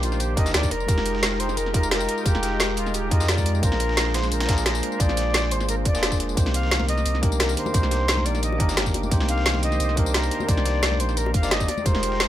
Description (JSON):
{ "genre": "liquid drum and bass", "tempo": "175 BPM", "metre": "4/4", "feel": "straight", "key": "C minor", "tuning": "A4 = 439 Hz", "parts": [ { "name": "reedy silver concert flute", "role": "melody", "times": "0.0-12.3 s", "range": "F4 to F5", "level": "-28 LUFS", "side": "left 1 dB", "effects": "ping-pong delay" }, { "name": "bell-like tine electric piano", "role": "accompaniment", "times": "0.0-12.3 s", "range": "Ab3 to D5", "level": "-29 LUFS", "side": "equal", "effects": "digital delay" }, { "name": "lush unison pad", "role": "sustained chords", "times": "0.0-12.3 s", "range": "Eb3 to D6", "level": "-32 LUFS", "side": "equal", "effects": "chorus" }, { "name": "warm sub bass", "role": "bass", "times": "0.0-12.3 s", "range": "Eb1 to F2", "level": "-26 LUFS", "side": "equal", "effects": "none" }, { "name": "drum and bass drum kit", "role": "drums", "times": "0.0-12.3 s", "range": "hi-hat, snare drum, tambourine", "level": "-26 LUFS", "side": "equal", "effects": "none" }, { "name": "dusty soul sampler-style drum kit", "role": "drums", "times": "0.0-12.3 s", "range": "hi-hat, snare drum", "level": "-32 LUFS", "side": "right 2 dB", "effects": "overdrive, high-pass filter on hats, high-pass filter on snare" }, { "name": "electronic kick drum", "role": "drums", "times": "0.4-11.9 s", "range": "none", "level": "-22 LUFS", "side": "equal", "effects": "none" }, { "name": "congas and bongos", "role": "percussion", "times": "6.8-11.8 s", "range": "none", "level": "-35 LUFS", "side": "left 4 dB", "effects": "none" } ], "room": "digital ambience", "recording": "none", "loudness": "-20 LUFS", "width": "side -12 dB against mid", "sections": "0.0-12.3 A section", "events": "none", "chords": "0.0 Cm9; 0.7 Fm11; 3.6 Bb9; 6.4 Cm9; 11.7 Fm11" }